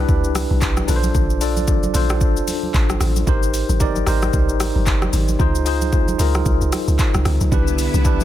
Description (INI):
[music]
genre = amapiano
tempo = 113 BPM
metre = 4/4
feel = swing 58% on 16ths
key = unclear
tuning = A4 = 440 Hz
[part]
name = tine electric piano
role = accompaniment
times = 0.0-8.2 s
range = D4 to D5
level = -22 LUFS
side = left 1 dB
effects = medium stereo tremolo
[part]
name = deep log drum bass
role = bass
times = 0.0-8.2 s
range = G1 to D2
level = -19 LUFS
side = equal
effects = none
[part]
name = afro-pop drum kit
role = drums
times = 0.1-8.2 s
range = handclaps, hi-hat, kick drum, rim click, shaker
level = -20 LUFS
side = equal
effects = none
[part]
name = congas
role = percussion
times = 0.4-8.2 s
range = none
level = -29 LUFS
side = right 2 dB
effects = none
[part]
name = string machine, violins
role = sustained chords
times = 7.5-8.2 s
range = D3 to E4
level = -25 LUFS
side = left 2 dB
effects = ensemble chorus
[sound]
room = little or no reverb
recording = dense, heavily limited modern master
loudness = -16 LUFS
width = side -12 dB against mid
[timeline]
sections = 0.0-8.2 A section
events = none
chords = 0.0 Cmaj9; 0.9 Bbmaj9; 3.3 Abmaj9; 5.4 Dbmaj9; 7.5 Cmaj9